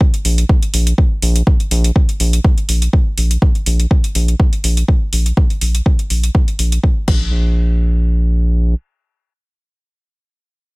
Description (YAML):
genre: deep house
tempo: 123 BPM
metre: 4/4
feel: swing 54% on 16ths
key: unclear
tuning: A4 = 440 Hz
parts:
  - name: electronic kick drum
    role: drums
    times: 0.0-7.2 s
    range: none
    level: -13 LUFS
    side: equal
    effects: small room ambience
  - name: deep house drum kit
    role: drums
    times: 0.1-7.2 s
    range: crash cymbal, hi-hat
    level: -22 LUFS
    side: equal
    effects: small room ambience
  - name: round analog bass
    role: bass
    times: 0.2-8.7 s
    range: Bb1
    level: -14 LUFS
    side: equal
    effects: sidechain pumping
room: little or no reverb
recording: none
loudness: -12 LUFS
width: side -26 dB against mid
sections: 0.0-7.3 A section; 7.3-10.8 B section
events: filter sweep on analog synth bass 0.0-7.3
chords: none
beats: 0.01 0.49 0.98 | 1.47 1.96 2.44 2.93 | 3.42 3.91 4.39 4.88 | 5.37 5.86 6.35 6.83 | 7.32 7.81 8.30